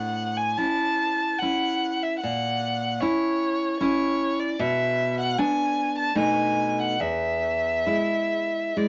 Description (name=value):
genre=romantic duo for violin and classical guitar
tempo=67-77 BPM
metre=3/4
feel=rubato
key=A major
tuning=A4 = 440 Hz
part: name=warm violin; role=melody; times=0.0-8.9 s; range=C#5 to A5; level=-27 LUFS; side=equal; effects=none
part: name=nylon-string guitar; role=accompaniment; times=0.0-8.9 s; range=E2 to E4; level=-28 LUFS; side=equal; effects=none
room=moderate studio ambience, RT60 0.5 s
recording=nothing above 7.7 kHz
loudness=-25 LUFS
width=mono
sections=0.0-8.9 A section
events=none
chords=0.0 A; 2.2 F#7/A#; 4.6 Bm; 6.2 B7; 7.0 E